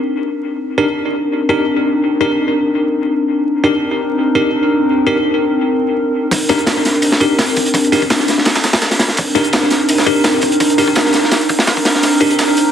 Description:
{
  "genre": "drum and bass, jungle",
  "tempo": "168 BPM",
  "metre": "4/4",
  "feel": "swing 53% on 16ths",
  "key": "C minor",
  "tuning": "A4 = 440 Hz",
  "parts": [
    { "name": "warbly tape-like pad", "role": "sustained chords", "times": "0.0-12.7 s", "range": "C4 to Bb4", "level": "-15 LUFS", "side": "equal", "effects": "chorus, built-in reverb" },
    { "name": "bell-like tine electric piano", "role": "stabs", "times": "0.8-12.3 s", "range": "D4 to Bb4", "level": "-18 LUFS", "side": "left 1 dB", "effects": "fast stereo tremolo, dub echo" },
    { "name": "breakbeat sampler-style drum kit", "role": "drums", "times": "6.3-12.7 s", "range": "hi-hat, snare drum", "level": "-21 LUFS", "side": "right 2 dB", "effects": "high-pass filter on hats, high-pass filter on snare" },
    { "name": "crunchy breakbeat drum kit", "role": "drums", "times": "6.3-12.7 s", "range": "hi-hat, kick drum, snare drum", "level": "-16 LUFS", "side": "equal", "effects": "high-pass filter on kick, high-pass filter on hats, high-pass filter on snare, high-pass filter on room" }
  ],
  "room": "wet echo chamber reverb, RT60 1.6 s, small room ambience",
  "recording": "heavily compressed radio sound, multiband compression, vinyl crackle, high-pass filter",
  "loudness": "-12 LUFS",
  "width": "side -9 dB against mid",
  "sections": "0.0-6.3 A section; 6.3-12.7 B section",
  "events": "filter sweep on ambient pad 0.0-6.3; build-up 6.3-12.7; drum fill 12.0-12.7",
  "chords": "0.0 Cm9"
}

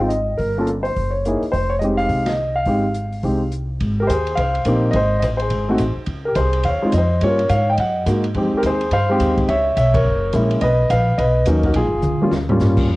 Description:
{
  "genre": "jazz piano trio",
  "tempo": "212 BPM",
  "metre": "4/4",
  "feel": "swing 61% on 8ths",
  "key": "F minor, Ab major from 3.8 s",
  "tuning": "A4 = 440 Hz",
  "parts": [
    { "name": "warm concert grand piano", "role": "melody", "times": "0.0-12.9 s", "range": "F#3 to G5", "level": "-18 LUFS", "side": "equal", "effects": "cassette tape, plate reverb" },
    { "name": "upright bass", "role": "bass", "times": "0.0-13.0 s", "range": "F1 to Ab2", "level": "-20 LUFS", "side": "equal", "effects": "none" },
    { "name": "open jazz drum kit", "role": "drums", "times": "0.1-13.0 s", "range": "crash cymbal, hi-hat, kick drum, ride cymbal, snare drum, toms", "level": "-26 LUFS", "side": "equal", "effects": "cassette tape" }
  ],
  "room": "moderate small room reverb, RT60 0.5 s",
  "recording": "home recording on cassette",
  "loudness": "-16 LUFS",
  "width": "side -20 dB against mid",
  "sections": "0.0-3.8 A section; 3.8-12.9 B section",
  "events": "band accent 2.2, 9.9; drum fill 12.0-12.6",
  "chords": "0.4 Gm; 1.0 Gb13; 1.5 Fm9; 3.8 Abmaj9; 4.9 Ab(b9); 6.1 Dbmaj7; 7.2 Gm7b5; 7.8 Gb69; 8.4 Fm9; 9.5 Dbm7; 10.1 Gb7; 10.6 Bmaj7; 11.8 Bbm7; 12.3 Eb7"
}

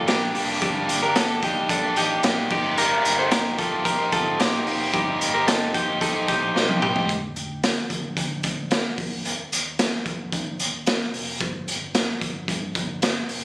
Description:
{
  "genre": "jangly indie pop",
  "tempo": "111 BPM",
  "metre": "4/4",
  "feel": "straight",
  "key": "unclear",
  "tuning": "A4 = 440 Hz",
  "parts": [
    { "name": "crunchy overdriven guitar", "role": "accompaniment", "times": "0.0-7.1 s", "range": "G3 to C5", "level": "-25 LUFS", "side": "right 1 dB", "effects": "none" },
    { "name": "direct-recorded clean electric guitar", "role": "arpeggios", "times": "0.0-7.1 s", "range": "D4 to C5", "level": "-23 LUFS", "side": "left 1 dB", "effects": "none" },
    { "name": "vintage muted fingered electric bass", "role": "bass", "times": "0.0-13.4 s", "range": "F1 to Eb3", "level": "-36 LUFS", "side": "equal", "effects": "none" },
    { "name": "raw garage drum kit", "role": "drums", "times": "0.1-13.4 s", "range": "crash cymbal, hi-hat, kick drum, snare drum, toms", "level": "-24 LUFS", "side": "equal", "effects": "none" }
  ],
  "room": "light reverb",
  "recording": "recorded on a phone in the room, studio reverb, compression",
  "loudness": "-20 LUFS",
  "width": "side -24 dB against mid",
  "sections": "0.0-7.1 A section; 7.1-13.4 B section",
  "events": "drum fill 6.6-7.1",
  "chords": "0.0 Gm; 2.5 Cm7; 7.1 N.C."
}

